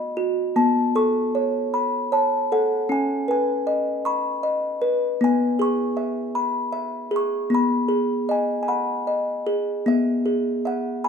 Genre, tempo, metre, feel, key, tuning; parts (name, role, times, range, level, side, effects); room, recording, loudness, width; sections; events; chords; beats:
children's music, lullaby; 51 BPM (dotted quarters); 6/8; rubato; E major; A4 = 437 Hz
music box; solo; 0.0-11.1 s; B3 to C#6; -20 LUFS; left 1 dB
moderate recital hall reverb, RT60 1.6 s; minimal, uncompressed stereo recording; -20 LUFS; side -6 dB against mid
0.0-9.9 A section; 9.9-11.1 B section
0.0 B; 0.6 Aadd9; 2.9 Badd9; 5.2 E; 7.5 B6; 9.9 E
| 0.56 1.74 | 2.90 4.06 | 5.21 6.36 | 7.52 8.69 | 9.88 11.06